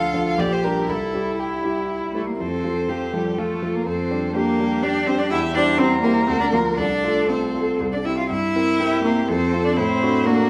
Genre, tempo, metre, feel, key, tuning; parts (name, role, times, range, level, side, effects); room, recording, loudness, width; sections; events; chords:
quick classical-period movement for piano quartet; 122 BPM; 3/4; rubato; F major; A4 = 439 Hz
rich violin; melody; 0.0-10.5 s; G4 to F5; -30 LUFS; equal
clear cello; second line; 0.0-10.5 s; G3 to A4; -25 LUFS; equal
rich violin; second line; 0.0-10.5 s; E4 to Bb4; -30 LUFS; equal
warm grand piano; accompaniment; 0.0-10.5 s; Bb1 to C5; -25 LUFS; equal
moderate recital hall reverb, RT60 1.5 s; close, detailed microphones; -21 LUFS; mono
0.0-2.4 A section; 2.4-10.5 B section
0.4 Gm/Bb; 0.9 C; 2.4 F; 3.9 Gm7/F; 5.3 C/E; 6.3 Bb/D; 6.8 F/C; 7.8 C; 8.3 C7/G; 9.3 F; 9.8 D7/A